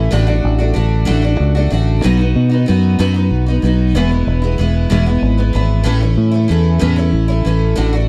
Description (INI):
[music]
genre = folk rock and heartland rock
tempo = 63 BPM (dotted quarters)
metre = 6/8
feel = straight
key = unclear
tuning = A4 = 442 Hz
[part]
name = picked twelve-string acoustic guitar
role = accompaniment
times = 0.0-8.1 s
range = E2 to F#4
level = -20 LUFS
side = equal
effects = subtle chorus
[part]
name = fingered electric bass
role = bass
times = 0.0-8.1 s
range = E1 to B2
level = -16 LUFS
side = equal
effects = none
[sound]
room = studio ambience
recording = dry, close 1970s-style studio recording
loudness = -14 LUFS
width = mono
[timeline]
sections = 0.0-8.1 A section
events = none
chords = 0.1 D/A; 2.0 B; 3.9 E; 5.9 A